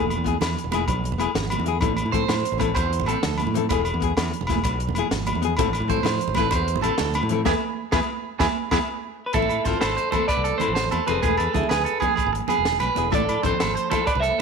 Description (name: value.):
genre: highlife guitar band.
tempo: 128 BPM (dotted quarters).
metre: 12/8.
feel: straight.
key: A harmonic minor.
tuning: A4 = 441 Hz.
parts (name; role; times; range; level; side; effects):
nylon-string guitar; accompaniment; 0.0-14.4 s; E3 to A4; -28 LUFS; left 13 dB; none.
modern bright fingered electric bass; bass; 0.0-14.3 s; E1 to A2; -27 LUFS; equal; none.
congas; percussion; 0.0-14.4 s; none; -30 LUFS; right 13 dB; none.
compact cocktail drum kit; drums; 0.1-14.3 s; hi-hat, kick drum, snare drum; -28 LUFS; left 1 dB; none.
agogo bells; percussion; 0.1-14.4 s; none; -29 LUFS; left 3 dB; none.
electric guitar at the edge of break-up; arpeggios; 2.1-14.4 s; G#4 to E5; -26 LUFS; right 10 dB; slapback echo.
clean electric guitar; melody; 9.3-14.4 s; E4 to E5; -25 LUFS; left 1 dB; none.
room: light reverb, small room ambience.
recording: 1960s-style stereo with parts hard left and right.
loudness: -20 LUFS.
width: side -5 dB against mid.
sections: 0.0-9.3 A section; 9.3-14.4 B section.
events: clean electric guitar solo 0.0-9.3; band accent 7.5-9.3.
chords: 0.0 E; 1.8 Am; 3.7 E; 5.6 Am; 7.5 E; 9.3 Am; 11.2 E; 13.1 Am.